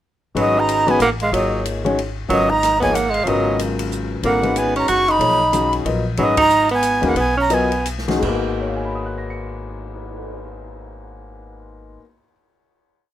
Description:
modal jazz; 158-187 BPM; 3/4; swing 61% on 8ths; G# dorian; A4 = 439 Hz
warm concert grand piano; accompaniment; 0.3-12.3 s; G#2 to C#7; -22 LUFS; left 3 dB
upright bass; bass; 0.3-12.0 s; F#1 to D#2; -27 LUFS; equal
breathy bright jazz flute; melody; 0.4-7.9 s; D#5 to C#6; -19 LUFS; right 1 dB
warm tenor saxophone; second line; 0.4-7.9 s; F#3 to F#4; -19 LUFS; right 3 dB
open jazz drum kit; drums; 0.4-10.4 s; crash cymbal, cymbal swell, hi-hat, kick drum, ride cymbal, snare drum; -31 LUFS; left 2 dB
light reverb, small room ambience; rough home demo mix; -16 LUFS; side -12 dB against mid
0.4-8.2 A section; 8.2-10.5 final chord
slowing down 6.2-8.2; band accent 6.3
0.4 G#m9
| 0.36 0.68 1.01 | 1.33 1.65 1.98 | 2.30 2.62 2.95 | 3.27 3.59 3.92 | 4.24 4.56 4.88 | 5.21 5.53 5.85 | 6.17 6.49 6.82 | 7.16 7.50 7.85 | 8.22 8.60 8.98 | 9.36 9.74 10.11

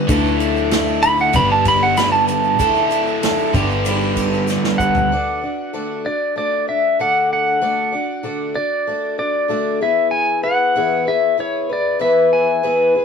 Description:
folk rock and heartland rock; 96 BPM; 4/4; straight; D major; A4 = 440 Hz
pedal steel guitar; melody; 0.0-13.0 s; B4 to B5; -17 LUFS; equal
picked twelve-string acoustic guitar; accompaniment; 0.0-13.0 s; D3 to D5; -21 LUFS; left 2 dB
overdriven electric guitar; riff; 0.0-5.1 s; G2 to A4; -19 LUFS; right 1 dB
fingered electric bass; bass; 0.1-4.6 s; G1 to D2; -22 LUFS; left 1 dB
unplugged drum kit; drums; 0.1-5.1 s; kick drum, ride cymbal, snare drum, toms; -24 LUFS; equal
tube shaker; percussion; 0.1-5.0 s; -38 LUFS; right 6 dB
moderate small room reverb, RT60 0.5 s; rough rehearsal-room recording; -15 LUFS; side -6 dB against mid
0.0-5.1 A section; 5.1-13.0 B section
pedal steel guitar solo 0.0-5.1; drum fill 4.5-5.1
0.1 Dsus2; 1.3 G; 2.6 Dsus2; 3.5 G; 5.1 D; 9.8 E
| 0.09 0.72 1.35 1.98 | 2.60 3.23 3.86 4.49 | 5.11 5.74 6.37 6.99 | 7.62 8.25 8.87 9.50 | 10.13 10.76 11.38 12.01 | 12.64

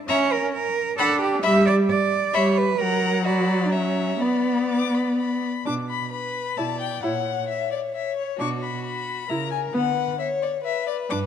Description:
quick classical-period movement for string quartet; 132 BPM; 3/4; rubato; B minor; A4 = 441 Hz
warm violin; melody; 0.1-11.2 s; C#5 to D6; -29 LUFS; left 10 dB
rich violin; second line; 0.1-11.3 s; F#4 to F#5; -30 LUFS; left 5 dB
warm viola; accompaniment; 0.1-11.3 s; F#3 to E4; -23 LUFS; equal
rich cello; bass; 0.1-11.3 s; G2 to E5; -26 LUFS; right 5 dB
moderate scoring stage reverb, RT60 2.0 s; -21 LUFS; side -8 dB against mid
0.0-5.7 A section; 5.7-11.3 A section
0.1 A#dim/C#; 1.0 Bm/D; 1.4 Em/G; 2.3 C#m7b5/G; 2.8 F#; 3.3 Bm/F#; 3.7 F#7; 4.2 Bm; 6.6 Em/B; 7.0 F#7/A#; 8.4 Bm; 9.3 A#dim/C#; 9.7 Bm/D
| 0.09 0.54 0.98 | 1.43 1.89 2.34 | 2.80 3.26 3.73 | 4.21 4.70 5.18 | 5.66 6.12 6.58 | 7.03 7.49 7.94 | 8.39 8.85 9.30 | 9.74 10.19 10.64 | 11.10

